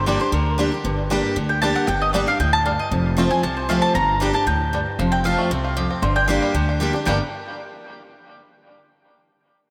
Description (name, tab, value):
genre	bluegrass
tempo	232 BPM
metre	4/4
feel	straight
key	G minor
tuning	A4 = 442 Hz
part	mandolin	melody	0.0-7.2 s	Bb4 to Bb5	-25 LUFS	equal	tape echo
part	picked steel-string acoustic guitar	accompaniment	0.0-7.2 s	F2 to G4	-25 LUFS	equal	none
part	upright bass	bass	0.0-7.2 s	F1 to D2	-26 LUFS	equal	none
part	bluegrass banjo	melody	0.1-7.2 s	D3 to G4	-31 LUFS	equal	tape echo
room	wet plate reverb, RT60 3.0 s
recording	dreamy mix soaked in reverb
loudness	-20 LUFS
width	mono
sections	0.0-5.0 A section; 5.0-7.1 B section; 7.1-8.1 C section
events	none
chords	0.0 Gm; 2.9 F; 4.0 Gm; 5.0 F; 6.0 Gm; 7.1 G5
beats	0.07 0.33 0.58 | 0.84 1.10 1.36 1.62 | 1.88 2.14 2.40 2.66 | 2.92 3.17 3.43 3.69 | 3.95 4.21 4.47 4.73 | 4.99 5.25 5.51 5.77 | 6.03 6.29 6.55 6.81 | 7.07